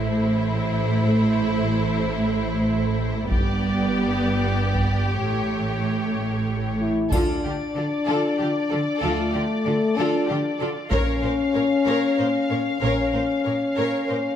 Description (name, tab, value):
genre	cinematic, epic orchestral film score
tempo	63 BPM (dotted quarters)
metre	6/8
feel	straight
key	D minor from 7.1 s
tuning	A4 = 440 Hz
part	rich symphonic violin section	melody	0.0-14.4 s	C5 to F5	-31 LUFS	left 4 dB	none
part	clear symphonic violin section	second line	0.0-14.2 s	E4 to Db5	-30 LUFS	left 2 dB	none
part	warm symphonic viola section	accompaniment	0.0-14.1 s	A3 to Bb4	-28 LUFS	equal	none
part	rich studio cello section	bass	0.0-14.2 s	G2 to D3	-27 LUFS	right 2 dB	none
part	rich symphonic double bass section	bass	0.0-13.1 s	G1 to D2	-27 LUFS	right 3 dB	none
part	solo taiko drums	drums	3.3-12.1 s	none	-26 LUFS	equal	none
part	mellow French horn section	sustained chords	6.8-14.4 s	A3 to E4	-23 LUFS	left 3 dB	none
part	triangle	percussion	7.1-8.3 s	none	-42 LUFS	left 4 dB	none
room	moderate scoring stage reverb, RT60 1.5 s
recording	none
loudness	-20 LUFS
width	side -9 dB against mid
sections	0.0-7.1 A section; 7.1-14.4 B section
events	build-up 0.0-7.1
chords	0.0 Am; 3.3 G; 5.2 A7; 7.1 Dm; 10.9 Bbm